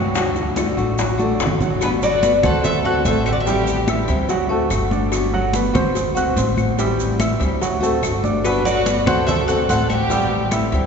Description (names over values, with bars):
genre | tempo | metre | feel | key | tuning
latin, Cuban son and guajira | 145 BPM | 4/4 | straight | unclear | A4 = 439 Hz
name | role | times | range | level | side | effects
nylon-string guitar | accompaniment | 0.0-10.9 s | D3 to F#4 | -24 LUFS | left 3 dB | none
warm grand piano | arpeggios | 0.0-10.9 s | F#3 to F#6 | -23 LUFS | right 4 dB | none
upright bass | bass | 0.0-10.9 s | G1 to D2 | -24 LUFS | equal | none
maracas | percussion | 0.1-10.9 s | none | -34 LUFS | right 8 dB | none
bongos and cowbell | percussion | 0.2-10.9 s | none | -28 LUFS | left 4 dB | none
congas | percussion | 0.2-10.7 s | none | -24 LUFS | left 1 dB | none
claves | percussion | 0.6-10.7 s | none | -34 LUFS | left 5 dB | none
Cuban tres | melody | 1.8-4.1, 8.4-10.7 s | B4 to F#5 | -23 LUFS | left 2 dB | none
warm studio violin section | second line | 1.8-4.1, 8.5-10.7 s | D4 to A4 | -26 LUFS | right 2 dB | none
room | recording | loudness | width
wet cathedral reverb, RT60 5.2 s | recorded in a church or concert hall, nothing above 7.9 kHz | -16 LUFS | side -6 dB against mid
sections
0.0-1.8 A section; 1.8-10.9 B section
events
drum fill 1.2-1.8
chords
0.2 D; 1.8 Gmaj7; 2.6 D7; 3.5 Am7; 4.3 D7; 5.1 Gmaj7; 6.0 D7; 6.8 Am7; 7.6 D7; 8.4 Gmaj7; 9.3 D7; 10.1 Am7